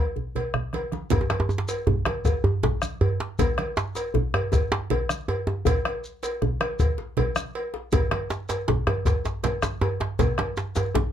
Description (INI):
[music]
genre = west african traditional, West African drum ensemble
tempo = 106 BPM (dotted quarters)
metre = 12/8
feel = straight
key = none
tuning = none
[part]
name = congas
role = percussion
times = 0.2-11.1 s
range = none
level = -29 LUFS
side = right 6 dB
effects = none
[part]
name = djembe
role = percussion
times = 0.2-11.1 s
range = none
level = -30 LUFS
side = left 3 dB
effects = none
[part]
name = cowbell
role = percussion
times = 0.4-10.9 s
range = none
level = -30 LUFS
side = equal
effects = none
[part]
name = bombo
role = percussion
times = 0.5-11.0 s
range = none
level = -26 LUFS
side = left 2 dB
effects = none
[part]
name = djembe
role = percussion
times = 1.1-11.1 s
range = none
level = -26 LUFS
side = right 2 dB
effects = none
[part]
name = shekere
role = percussion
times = 1.1-10.9 s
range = none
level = -32 LUFS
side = left 1 dB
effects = none
[sound]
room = wet small room ambience, RT60 0.5 s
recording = dark, warm production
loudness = -23 LUFS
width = side -10 dB against mid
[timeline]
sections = 0.0-1.1 A section; 1.1-11.1 B section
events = drum fill 0.2-1.1, 9.3-10.2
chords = none